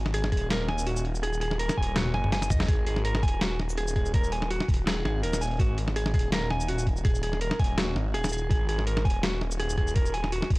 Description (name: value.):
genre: half-time drum and bass.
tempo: 165 BPM.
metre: 4/4.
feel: swing 54% on 16ths, half-time.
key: unclear.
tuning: A4 = 441 Hz.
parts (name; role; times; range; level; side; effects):
phased detuned saw bass; bass; 0.0-10.6 s; D#1 to G#1; -29 LUFS; equal; phaser.
clean electric guitar; arpeggios; 0.1-10.5 s; F#4 to G#5; -32 LUFS; equal; tape echo.
boom bap sampler-style drum kit; drums; 0.1-10.6 s; hi-hat, shaker, snare drum, toms; -31 LUFS; equal; studio ambience.
electronic kick drum; drums; 0.3-10.6 s; none; -25 LUFS; equal; studio ambience.
room: little or no reverb.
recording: dry, gritty hardware recording, transformer saturation, cassette tape.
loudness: -24 LUFS.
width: side -22 dB against mid.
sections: 0.0-2.7 A section; 2.7-10.6 A section.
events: drop 0.0-2.7, 2.7-10.6; drum fill 2.0-2.7.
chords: 0.0 G#sus2.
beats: 0.14 0.50 0.87 | 1.23 1.59 1.96 2.32 | 2.69 3.05 3.41 3.78 | 4.14 4.50 4.87 5.23 | 5.59 5.96 6.32 6.68 | 7.05 7.41 7.78 8.14 | 8.50 8.87 9.23 9.59 | 9.96 10.32.